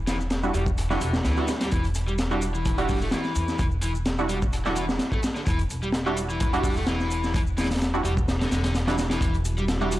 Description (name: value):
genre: breakbeat, breaks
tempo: 128 BPM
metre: 4/4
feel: swing 54% on 16ths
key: E minor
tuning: A4 = 436 Hz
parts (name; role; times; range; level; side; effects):
- orchestra-hit-like synth stab; stabs; 0.0-9.9 s; G3 to F#4; -29 LUFS; right 2 dB; built-in reverb, analog delay
- upright bass; bass; 0.0-10.0 s; E1 to E2; -28 LUFS; equal; none
- raw garage guitar; riff; 0.1-9.9 s; D3 to B3; -31 LUFS; left 1 dB; overdrive, low-pass filter, analog delay
- crunchy breakbeat drum kit; drums; 0.1-10.0 s; hi-hat, kick drum, snare drum; -26 LUFS; equal; none
- shaker; drums; 0.1-10.0 s; none; -42 LUFS; equal; overdrive
- dark analog pad; sustained chords; 9.4-10.0 s; G3 to E5; -34 LUFS; equal; chorus, sidechain pumping
room: studio ambience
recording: dry, gritty hardware recording, cassette tape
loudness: -22 LUFS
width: side -15 dB against mid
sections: 0.0-10.0 A section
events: none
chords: 0.0 Em9